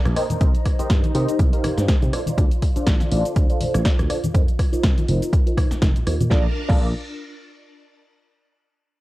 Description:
filtered disco house; 122 BPM; 4/4; swing 56% on 16ths; Bb major; A4 = 440 Hz
phased string machine; sustained chords; 0.0-6.5 s; Bb3 to C6; -32 LUFS; equal; ensemble chorus, phaser, sidechain pumping, low-pass filter
dry thumbed slap bass; bass; 0.1-6.9 s; F1 to C3; -23 LUFS; equal; tube saturation, sidechain pumping, low-pass filter
punchy analog drum machine; drums; 0.1-6.8 s; crash cymbal, hi-hat, rim click, shaker, snare drum; -29 LUFS; equal; overdrive, sidechain pumping on hats, sidechain pumping on perc, sidechain pumping on cymbals
tambourine and congas; percussion; 0.1-6.3 s; -28 LUFS; left 2 dB; sidechain pumping on perc, low-pass filter on perc
funky polysynth comp; accompaniment; 0.2-6.9 s; D4 to F5; -26 LUFS; equal; chorus, phaser, sidechain pumping, low-pass filter
electronic kick drum; drums; 0.4-6.8 s; -18 LUFS; equal; overdrive
little or no reverb; dry, gritty hardware recording, cassette tape; -17 LUFS; side -18 dB against mid
0.0-6.3 A section; 6.3-8.3 B section
filter sweep 0.0-6.3
0.2 Cm7; 2.1 Dm7; 4.3 F7sus4; 6.3 Bbmaj7

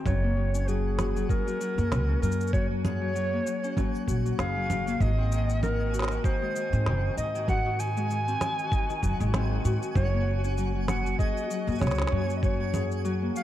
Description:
folktronica; 97 BPM; 4/4; swing 56% on 16ths; Gb lydian; A4 = 444 Hz
Celtic harp; arpeggios; 0.0-13.4 s; Eb3 to Ab4; -32 LUFS; left 4 dB; low-pass filter, digital delay
dark clarinet; melody; 0.1-13.4 s; Ab4 to Ab5; -32 LUFS; right 1 dB; digital delay
upright bass; bass; 0.1-13.3 s; Gb1 to Ab2; -28 LUFS; right 1 dB
electronic congas, cabasa and snare drum; drums; 0.1-13.4 s; -34 LUFS; right 2 dB; small room ambience
electronic kick drum; drums; 0.1-12.6 s; -28 LUFS; equal; small room ambience
twinkling granular texture; texture; 0.6-13.4 s; Gb4 to Ab5; -41 LUFS; equal; built-in reverb
light reverb, small room ambience; dark, warm production; -25 LUFS; side -13 dB against mid
0.0-13.4 A section
0.1 Gbadd9

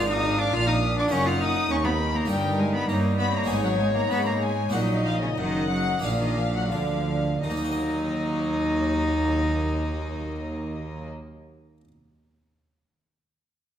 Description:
classical, baroque-style concerto movement with solo episodes; 83-103 BPM; 4/4; straight; Eb minor; A4 = 439 Hz
rich cello; melody; 0.0-11.1 s; Db3 to F4; -28 LUFS; left 1 dB
rich chamber violin section; melody; 0.0-11.1 s; Db5 to F6; -31 LUFS; left 3 dB
rich chamber violin section; second line; 0.0-11.1 s; Bb3 to Gb5; -33 LUFS; left 5 dB
dark chamber viola section; accompaniment; 0.0-11.1 s; Gb3 to Eb4; -33 LUFS; right 4 dB
harpsichord; accompaniment; 0.0-11.9 s; Eb2 to Eb5; -34 LUFS; left 1 dB
rich chamber double bass section; bass; 0.0-11.1 s; Gb1 to Ab2; -29 LUFS; right 2 dB
warm chamber cello section; bass; 0.0-11.1 s; Eb2 to Ab3; -32 LUFS; right 1 dB
wet recital hall reverb, RT60 1.8 s; -22 LUFS; side -10 dB against mid
0.0-7.4 A section; 7.4-10.3 B section
slowing down 1.1-7.4
0.0 Bb7/Ab; 1.1 Ebm/Gb; 2.3 Eb7/G; 3.5 Abm; 4.7 Ebm/Bb; 6.0 Bb7; 7.4 Ebm

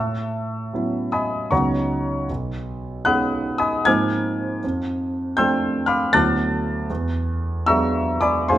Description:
classical, impressionist solo piano; 70-82 BPM; 3/4; rubato; A4 = 444 Hz
warm concert grand piano; solo; 0.0-8.6 s; B1 to A6; -19 LUFS; equal
moderate recital hall reverb, RT60 1.5 s; close, detailed microphones; -19 LUFS; side -13 dB against mid
0.0-8.6 A section
0.0 A69; 1.5 C#11; 2.3 B69; 3.9 G#69; 4.6 F69; 6.1 D69; 6.9 E9

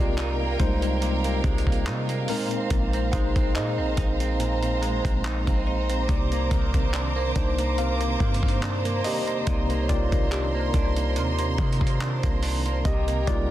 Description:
contemporary R&B; 71 BPM; 4/4; swing 54% on 16ths; C minor; A4 = 439 Hz
mellow tine electric piano; accompaniment; 0.0-13.5 s; G3 to F5; -30 LUFS; left 3 dB; medium stereo tremolo
warm studio string section; sustained chords; 0.0-13.5 s; Bb4 to D6; -31 LUFS; right 3 dB; sidechain pumping
direct-recorded clean electric guitar; arpeggios; 0.0-13.5 s; Bb2 to Eb4; -32 LUFS; right 5 dB; harmonic tremolo, digital delay
warm 808-style bass; bass; 0.0-13.5 s; Bb1 to C3; -27 LUFS; equal
dusty soul sampler-style drum kit; drums; 0.2-13.5 s; handclaps, hi-hat, kick drum; -26 LUFS; equal; soft clipping on snare
glassy wavetable pluck; texture; 3.1-13.2 s; G4 to C6; -39 LUFS; right 1 dB; chorus, digital delay
digital ambience; dense, heavily limited modern master; -22 LUFS; side -13 dB against mid
0.0-13.5 A section
tine electric piano solo 0.0-13.5
0.0 Fm11/C; 2.3 Bb9sus4; 6.1 Cm9; 12.9 Fm11/C

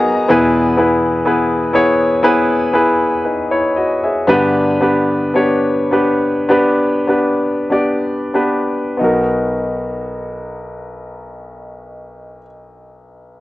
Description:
pop; 46-63 BPM; 4/4; straight; A4 = 440 Hz
clear concert grand piano; accompaniment; 0.0-13.4 s; B1 to E5; -13 LUFS; left 1 dB
moderate booth ambience, RT60 0.3 s; home recording on cassette; -13 LUFS; side -16 dB against mid
0.0-9.0 A section; 9.0-13.4 B section
slowing down 0.3-9.0
0.3 E; 4.3 G; 9.0 Bmaj7

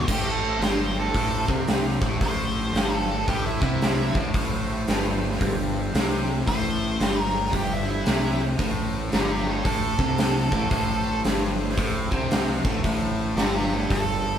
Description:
blues rock power trio and southern rock; 113 BPM; 4/4; swing 64% on 8ths; A minor; A4 = 441 Hz
octave-fuzz lead guitar; melody; 0.0-14.4 s; E4 to D5; -28 LUFS; right 2 dB; distortion
tonewheel organ; sustained chords; 0.0-14.4 s; A3 to C5; -37 LUFS; right 2 dB
fuzz guitar; riff; 0.0-14.4 s; G2 to C3; -28 LUFS; left 1 dB; distortion
growling fingered electric bass; bass; 0.1-14.4 s; G1 to C2; -30 LUFS; equal; overdrive
big rock drum kit; drums; 0.1-14.1 s; crash cymbal, hi-hat, kick drum, snare drum; -25 LUFS; equal
moderate stone room reverb, RT60 0.9 s; band playing live in one room; -21 LUFS; side -9 dB against mid
0.1-14.4 A section
0.1 Am

